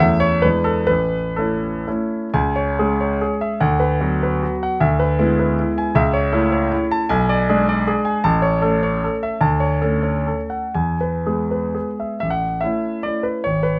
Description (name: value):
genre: classical, romantic triple-time dance for piano with dotted rhythms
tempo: 115-170 BPM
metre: 3/4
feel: rubato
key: A major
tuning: A4 = 445 Hz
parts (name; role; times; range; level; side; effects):
- warm grand piano; solo; 0.0-13.8 s; G#1 to A5; -19 LUFS; equal; none
room: little or no reverb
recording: close, detailed microphones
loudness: -19 LUFS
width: mono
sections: 0.0-2.3 A section; 2.3-12.2 B section; 12.2-13.8 A section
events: none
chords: 0.0 A/E; 0.4 E7; 0.9 A; 2.3 C#m; 3.6 Bm/D; 4.8 E7/D; 6.0 A/C#; 7.1 G#dim/B; 8.2 A; 9.4 Dmaj7; 10.7 E; 12.2 A